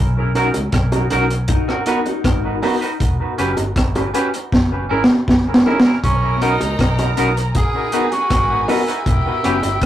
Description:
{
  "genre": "lovers rock reggae",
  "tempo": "79 BPM",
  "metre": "4/4",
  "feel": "straight",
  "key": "B major",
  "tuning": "A4 = 440 Hz",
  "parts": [
    { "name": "vintage muted fingered electric bass", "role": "bass", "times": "0.0-9.9 s", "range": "E1 to C#2", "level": "-22 LUFS", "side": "equal", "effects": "none" },
    { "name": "mellow tine electric piano", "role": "accompaniment", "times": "0.3-9.6 s", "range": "B3 to B4", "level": "-24 LUFS", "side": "left 2 dB", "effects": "overdrive, medium stereo tremolo, dub echo" },
    { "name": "twangy electric guitar", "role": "stabs", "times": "0.4-9.6 s", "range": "B3 to B4", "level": "-23 LUFS", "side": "right 3 dB", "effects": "dub echo" },
    { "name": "crunchy breakbeat drum kit", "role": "drums", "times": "0.4-9.9 s", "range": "hi-hat, kick drum, rim click, snare drum", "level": "-17 LUFS", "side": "equal", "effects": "none" },
    { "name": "bongos", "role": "percussion", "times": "0.5-9.8 s", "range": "none", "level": "-25 LUFS", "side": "right 1 dB", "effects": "none" },
    { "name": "electric guitar through a small old amp", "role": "arpeggios", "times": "1.5-3.0 s", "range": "D#4 to F#4", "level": "-25 LUFS", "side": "left 6 dB", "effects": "none" },
    { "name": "bright tenor saxophone", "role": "melody", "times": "6.0-9.9 s", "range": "C#4 to G#4", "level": "-21 LUFS", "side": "equal", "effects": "none" },
    { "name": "rich studio violin section", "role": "second line", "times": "6.0-9.9 s", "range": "G4 to A#5", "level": "-27 LUFS", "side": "right 2 dB", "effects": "none" }
  ],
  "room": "wet studio ambience, RT60 0.5 s",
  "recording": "rough rehearsal-room recording, tube saturation",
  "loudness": "-15 LUFS",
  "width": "side -12 dB against mid",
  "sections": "0.0-9.9 A section",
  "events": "drum fill 4.5-6.0",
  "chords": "0.0 Bmaj7; 1.5 G#m7; 3.0 Em6 (rootless); 4.5 F#7; 6.0 Bmaj7; 7.5 G#m7; 9.1 Em6",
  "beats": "0.73 1.49 2.25 | 3.01 3.76 4.52 5.28 | 6.03 6.79 7.55 8.31 | 9.06 9.82"
}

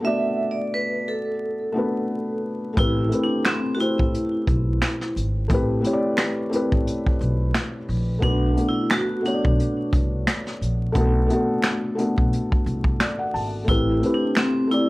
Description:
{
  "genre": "lo-fi hip hop",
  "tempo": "88 BPM",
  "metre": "4/4",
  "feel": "swing 56% on 16ths",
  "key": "A dorian",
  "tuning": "A4 = 440 Hz",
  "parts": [
    { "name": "vibraphone with hard mallets", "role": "melody", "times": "0.0-14.9 s", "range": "C4 to E5", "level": "-25 LUFS", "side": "right 1 dB", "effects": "low-pass filter" },
    { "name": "felt-muted upright piano", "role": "accompaniment", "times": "0.0-14.9 s", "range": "A3 to A5", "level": "-24 LUFS", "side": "left 1 dB", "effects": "cassette tape, low-pass filter" },
    { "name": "upright bass", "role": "bass", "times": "2.8-14.0 s", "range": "G#1 to C2", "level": "-24 LUFS", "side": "equal", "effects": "none" },
    { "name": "vintage brush drum kit", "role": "drums", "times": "2.8-14.9 s", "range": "finger snaps, hi-hat, kick drum, snare drum", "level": "-23 LUFS", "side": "equal", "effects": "vintage 12-bit sampler grit" },
    { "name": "finger snap", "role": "percussion", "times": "3.4-14.5 s", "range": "none", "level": "-35 LUFS", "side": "right 4 dB", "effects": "none" }
  ],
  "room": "moderate small room reverb, RT60 0.5 s",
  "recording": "vinyl crackle",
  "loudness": "-20 LUFS",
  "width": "side -20 dB against mid",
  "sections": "0.0-2.8 A section; 2.8-14.9 B section",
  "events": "filter sweep 0.0-2.8",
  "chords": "0.0 Bm7; 2.8 Am9; 8.2 Bm7; 13.7 Am9",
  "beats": "| 0.04 0.72 1.40 2.09 | 2.77 3.45 4.13 4.81 | 5.50 6.18 6.86 7.54 | 8.22 8.90 9.59 10.27 | 10.95 11.63 12.31 12.99 | 13.68 14.36"
}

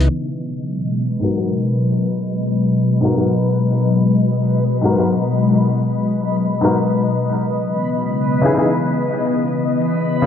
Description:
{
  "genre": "future garage",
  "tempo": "free time",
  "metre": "none",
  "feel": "none",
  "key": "G# minor",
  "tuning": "A4 = 439 Hz",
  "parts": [
    { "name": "warm upright piano", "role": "accompaniment", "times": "0.0-10.3 s", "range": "G#2 to B4", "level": "-21 LUFS", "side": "left 2 dB", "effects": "low-pass filter, analog delay" },
    { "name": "ethereal airy pad", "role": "sustained chords", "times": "0.0-10.3 s", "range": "B2 to D#5", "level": "-17 LUFS", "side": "left 2 dB", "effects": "ensemble chorus, built-in reverb" },
    { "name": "backwards swelling texture", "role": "texture", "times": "1.2-10.3 s", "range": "B4", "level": "-27 LUFS", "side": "right 2 dB", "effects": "built-in reverb" }
  ],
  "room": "moderate lush hall reverb, RT60 2.3 s",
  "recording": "vinyl crackle, low-pass filter",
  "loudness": "-15 LUFS",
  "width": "side -8 dB against mid",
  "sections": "0.1-10.3 A section",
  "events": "filter sweep on ambient pad 0.1-10.3; filter sweep on upright piano 0.1-10.3; filter sweep 0.1-10.3",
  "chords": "0.1 G#m7; 7.3 C#m9",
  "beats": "free time"
}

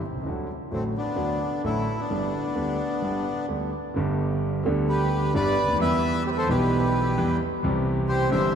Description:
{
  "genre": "tango",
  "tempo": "131 BPM",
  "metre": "4/4",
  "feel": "rubato",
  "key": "G major",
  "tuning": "A4 = 440 Hz",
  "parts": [
    { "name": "dark concert grand piano", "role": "accompaniment", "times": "0.1-8.6 s", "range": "G1 to G4", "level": "-24 LUFS", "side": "right 1 dB", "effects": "none" },
    { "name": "bandoneon", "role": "melody", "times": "0.7-8.5 s", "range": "A3 to E5", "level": "-27 LUFS", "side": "left 1 dB", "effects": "slapback echo" }
  ],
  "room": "wet cathedral reverb, RT60 5.9 s",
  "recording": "in a vast, echoing space",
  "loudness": "-22 LUFS",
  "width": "side -8 dB against mid",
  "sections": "0.0-4.0 A section; 4.0-8.6 A section",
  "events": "none",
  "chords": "0.3 D; 2.1 G; 5.8 Em; 7.6 C",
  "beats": "| 0.27 0.73 1.19 1.65 | 2.11 2.57 3.03 3.49 | 3.96 4.42 4.88 5.34 | 5.80 6.26 6.72 7.17 | 7.63 8.09 8.54"
}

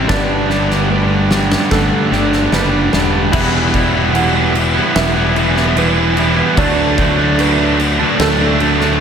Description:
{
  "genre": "post-rock",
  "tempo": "74 BPM",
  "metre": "4/4",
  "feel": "straight",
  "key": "E minor",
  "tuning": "A4 = 439 Hz",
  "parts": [
    { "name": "pedal steel guitar", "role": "sustained chords", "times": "0.0-9.0 s", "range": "D4 to B5", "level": "-26 LUFS", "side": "equal", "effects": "wide subtle chorus" },
    { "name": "clean electric guitar", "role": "arpeggios", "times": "0.0-3.3 s", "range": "G3 to B4", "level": "-24 LUFS", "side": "left 1 dB", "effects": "none" },
    { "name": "felt-muted upright piano", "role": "arpeggios", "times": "0.0-9.0 s", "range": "A4 to F#5", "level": "-24 LUFS", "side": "right 4 dB", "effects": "digital delay, slapback echo" },
    { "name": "crunchy overdriven guitar", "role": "riff", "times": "0.0-9.0 s", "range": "G2 to G4", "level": "-18 LUFS", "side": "right 8 dB", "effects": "none" },
    { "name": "thick fuzz guitar", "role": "riff", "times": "0.0-9.0 s", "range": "G2 to E4", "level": "-17 LUFS", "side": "left 6 dB", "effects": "distortion" },
    { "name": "fuzz fingered electric bass", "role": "bass", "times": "0.0-9.0 s", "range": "E1 to D2", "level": "-18 LUFS", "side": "equal", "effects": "overdrive" },
    { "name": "oversized low-tuned drum kit", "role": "drums", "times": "0.1-8.9 s", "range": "crash cymbal, kick drum, snare drum", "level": "-19 LUFS", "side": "right 1 dB", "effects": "none" }
  ],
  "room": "wet lush hall reverb, RT60 2.9 s",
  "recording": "big arena sound",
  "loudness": "-11 LUFS",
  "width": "side -7 dB against mid",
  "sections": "0.0-3.3 A section; 3.3-9.0 B section",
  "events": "build-up 0.0-3.3",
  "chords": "0.1 Gadd9; 3.3 Emadd9; 6.6 D",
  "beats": "| 0.09 0.90 1.72 2.53 | 3.34 4.15 4.96 5.77 | 6.58 7.38 8.19 9.00"
}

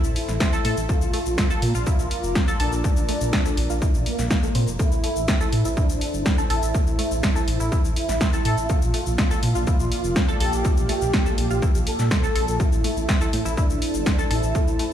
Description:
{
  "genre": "melodic techno",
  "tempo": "123 BPM",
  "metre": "4/4",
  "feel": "straight",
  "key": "A phrygian",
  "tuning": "A4 = 439 Hz",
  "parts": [
    { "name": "expressive synth lead", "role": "melody", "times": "0.0-14.9 s", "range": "Bb3 to A4", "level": "-28 LUFS", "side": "equal", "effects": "ensemble chorus, sidechain pumping, dub echo" },
    { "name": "dark analog pad", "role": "sustained chords", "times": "0.0-14.9 s", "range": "Bb3 to Bb5", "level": "-33 LUFS", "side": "right 1 dB", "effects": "chorus, sidechain pumping" },
    { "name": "dark detuned saw bass", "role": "bass", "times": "0.0-14.8 s", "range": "F1 to Bb2", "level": "-25 LUFS", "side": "equal", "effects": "tube saturation, sidechain pumping" },
    { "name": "techno drum kit", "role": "drums", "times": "0.0-14.9 s", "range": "hi-hat, shaker, snare drum", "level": "-28 LUFS", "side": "equal", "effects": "overdrive" },
    { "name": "tight sequenced synth", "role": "arpeggios", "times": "0.4-14.8 s", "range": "E3 to A4", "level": "-30 LUFS", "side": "left 1 dB", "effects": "chorus, phaser, sidechain pumping, dub echo" },
    { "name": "electronic kick drum", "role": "drums", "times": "0.4-14.7 s", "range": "none", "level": "-22 LUFS", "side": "equal", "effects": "overdrive" }
  ],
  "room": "digital ambience",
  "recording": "played on a big sound system in a bare room, stone room reverb",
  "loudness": "-19 LUFS",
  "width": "side -10 dB against mid",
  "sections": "0.0-14.9 A section",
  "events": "none",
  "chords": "0.0 Am; 0.9 Bb; 4.8 Am; 8.7 Bb; 12.6 Am",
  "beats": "0.40 | 0.89 1.38 1.87 2.35 | 2.84 3.33 3.82 4.31 | 4.79 5.28 5.77 6.26 | 6.75 7.23 7.72 8.21 | 8.70 9.19 9.67 10.16 | 10.65 11.14 11.62 12.11 | 12.60 13.09 13.57 14.06 | 14.55"
}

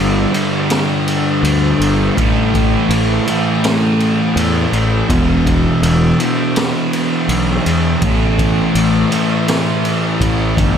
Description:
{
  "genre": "rock, shoegaze and dream pop",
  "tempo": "82 BPM",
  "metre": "4/4",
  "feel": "straight",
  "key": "unclear",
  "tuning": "A4 = 440 Hz",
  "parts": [
    { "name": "thick fuzz guitar", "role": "riff", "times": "0.0-10.8 s", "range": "E2 to A3", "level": "-14 LUFS", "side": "equal", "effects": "distortion, lush chorus" },
    { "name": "fuzz fingered electric bass", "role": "bass", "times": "0.0-10.8 s", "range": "E1 to E2", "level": "-17 LUFS", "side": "equal", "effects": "overdrive" },
    { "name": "raw garage drum kit", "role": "drums", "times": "0.3-10.7 s", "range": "kick drum, ride cymbal, snare drum", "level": "-19 LUFS", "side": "equal", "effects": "none" }
  ],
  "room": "wet huge ambient reverb, RT60 5.2 s",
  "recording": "dreamy mix soaked in reverb",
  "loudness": "-12 LUFS",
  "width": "side -8 dB against mid",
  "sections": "0.0-10.8 A section",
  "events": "none",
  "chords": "0.0 G5; 2.2 A5; 5.1 E5; 8.0 A5",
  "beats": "0.70 1.44 | 2.17 2.90 3.63 4.36 | 5.09 5.82 6.55 7.28 | 8.01 8.74 9.47 10.20"
}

